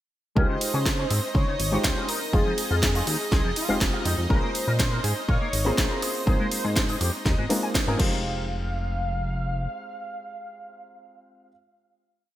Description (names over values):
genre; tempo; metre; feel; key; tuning
nu-disco, nu disco; 122 BPM; 4/4; straight; F minor; A4 = 441 Hz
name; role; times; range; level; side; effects
wide unison lead; melody; 0.4-11.5 s; F4 to F5; -32 LUFS; equal; lush chorus, digital delay
dark baby grand piano; accompaniment; 0.4-11.5 s; Ab3 to G5; -31 LUFS; left 1 dB; digital delay
lush unison pad; sustained chords; 0.4-8.0 s; Eb4 to Eb5; -35 LUFS; right 1 dB; chorus, sidechain pumping
electric guitar with an envelope filter; riff; 0.4-8.4 s; Db3 to Bb5; -34 LUFS; left 3 dB; ensemble chorus
chorused synth bass; bass; 0.4-9.7 s; F1 to Db3; -27 LUFS; equal; none
electronic kick drum; drums; 0.4-8.1 s; none; -25 LUFS; equal; none
house drum kit; drums; 0.6-8.1 s; crash cymbal, hi-hat, ride cymbal, snare drum; -28 LUFS; right 1 dB; gated reverb
room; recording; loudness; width
light reverb, digital ambience; bright 1980s-style digital production; -22 LUFS; side -13 dB against mid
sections
0.4-8.2 drop; 8.2-12.2 final hit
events
drop 0.4-8.2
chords
0.4 Dbmaj9#11; 2.1 Fm7; 4.3 Bbm7; 6.3 Ab6; 8.0 Fm7